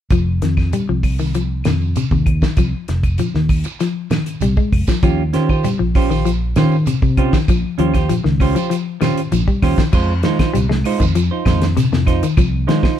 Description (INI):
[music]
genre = afrobeat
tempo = 98 BPM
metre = 4/4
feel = straight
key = F minor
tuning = A4 = 440 Hz
[part]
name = clean electric guitar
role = arpeggios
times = 0.1-12.9 s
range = C3 to Ab3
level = -20 LUFS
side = left 7 dB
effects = vibrato effect
[part]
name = fingered electric bass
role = bass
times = 0.1-12.7 s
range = F1 to Eb3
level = -19 LUFS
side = equal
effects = none
[part]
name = damped 70s drum kit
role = drums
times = 0.1-13.0 s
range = crash cymbal, hi-hat, kick drum, snare drum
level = -18 LUFS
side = right 1 dB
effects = none
[part]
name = claves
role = percussion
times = 0.1-13.0 s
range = none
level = -35 LUFS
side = left 6 dB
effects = none
[part]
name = shekere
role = percussion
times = 0.1-13.0 s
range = none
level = -26 LUFS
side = right 5 dB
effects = none
[part]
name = clean electric guitar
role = stabs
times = 5.0-13.0 s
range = Ab3 to C5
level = -21 LUFS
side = right 7 dB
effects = none
[sound]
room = light reverb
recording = band playing live in one room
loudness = -14 LUFS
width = side -10 dB against mid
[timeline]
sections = 0.1-9.9 A section; 9.9-13.0 B section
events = none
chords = 0.1 F7(no3); 5.0 Eb13; 9.9 Fm7